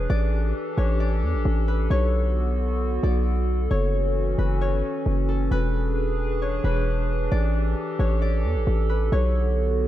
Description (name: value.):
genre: hip hop.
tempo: 133 BPM.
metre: 4/4.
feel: half-time.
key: B minor.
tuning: A4 = 438 Hz.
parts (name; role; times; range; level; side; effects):
concert harp; melody; 0.0-9.9 s; A4 to D5; -32 LUFS; left 2 dB; tape echo.
warbly tape-like pad; sustained chords; 0.0-9.9 s; D3 to B4; -28 LUFS; equal; chorus, built-in reverb.
warm 808-style bass; bass; 0.0-9.9 s; E1 to E2; -22 LUFS; equal; none.
room: small room ambience.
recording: rough home demo mix.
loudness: -21 LUFS.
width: side -13 dB against mid.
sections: 0.0-9.9 A section.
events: none.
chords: 0.1 A7sus4; 1.9 Bm7; 3.7 F#m7; 5.5 E7; 7.3 A7sus4; 9.1 Bm7.